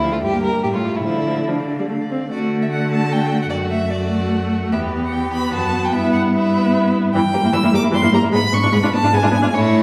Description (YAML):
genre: quick classical-period movement for string quartet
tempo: 149 BPM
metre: 3/4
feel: straight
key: D major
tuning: A4 = 440 Hz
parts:
  - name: rich violin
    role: melody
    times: 0.0-9.8 s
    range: C#5 to E6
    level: -26 LUFS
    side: equal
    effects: none
  - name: rich violin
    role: second line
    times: 0.0-9.8 s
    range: G3 to Bb4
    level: -25 LUFS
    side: equal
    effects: none
  - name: rich viola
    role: accompaniment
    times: 0.0-9.8 s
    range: E3 to D4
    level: -23 LUFS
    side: equal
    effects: none
  - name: rich cello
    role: bass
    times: 0.0-9.8 s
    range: D2 to D3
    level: -23 LUFS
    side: equal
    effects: none
room: wet recital hall reverb, RT60 1.3 s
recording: heard from further back in the room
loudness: -18 LUFS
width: mono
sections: 0.0-2.3 A section; 2.3-9.8 B section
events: none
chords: 0.2 Edim/G; 0.6 A7; 1.1 Dm; 2.3 D; 3.5 D/F#; 4.7 Em; 5.9 Em/G; 7.1 Edim/G; 8.3 G#dim